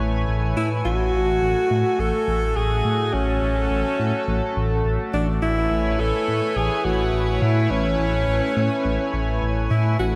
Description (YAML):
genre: synthwave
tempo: 105 BPM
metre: 4/4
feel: straight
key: unclear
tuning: A4 = 440 Hz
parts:
  - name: clear alto saxophone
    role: melody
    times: 0.0-10.2 s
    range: C#4 to A4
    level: -26 LUFS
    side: equal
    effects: analog delay
  - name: chorused pulse-width pad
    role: sustained chords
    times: 0.0-10.2 s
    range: A3 to G#5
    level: -29 LUFS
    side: equal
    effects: none
  - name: dark detuned saw bass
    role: bass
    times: 0.0-10.2 s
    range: A1 to A2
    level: -25 LUFS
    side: equal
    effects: none
room: moderate lush hall reverb, RT60 2.8 s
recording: dreamy mix soaked in reverb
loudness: -22 LUFS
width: mono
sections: 0.0-10.2 A section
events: none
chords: 0.0 Amaj7; 0.8 F#madd9/A; 5.4 Amaj7